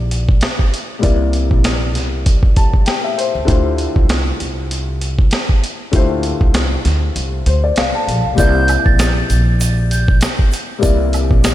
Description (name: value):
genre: hip hop, boom-bap hip-hop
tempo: 98 BPM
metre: 4/4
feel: swing 56% on 16ths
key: unclear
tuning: A4 = 441 Hz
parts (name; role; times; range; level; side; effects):
- dark upright piano; accompaniment; 0.0-11.5 s; C3 to A5; -20 LUFS; left 4 dB; cassette tape, high-pass filter, low-pass filter
- upright bass; bass; 0.0-11.5 s; Bb1 to D2; -17 LUFS; equal; none
- boom bap sampler-style drum kit; drums; 0.1-11.5 s; hi-hat, kick drum, snare drum; -16 LUFS; equal; vintage 12-bit sampler grit
- breathy silver concert flute; melody; 8.4-10.2 s; G6 to A6; -21 LUFS; right 2 dB; high-pass filter, low-pass filter, ping-pong delay
- egg shaker and woodblock; percussion; 8.4-11.5 s; none; -30 LUFS; right 13 dB; none
room: light reverb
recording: none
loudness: -13 LUFS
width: side -14 dB against mid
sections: 0.0-8.4 A section; 8.4-11.5 B section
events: kick muted 7.2-8.4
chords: 0.0 C7; 3.5 Dm11; 8.4 C7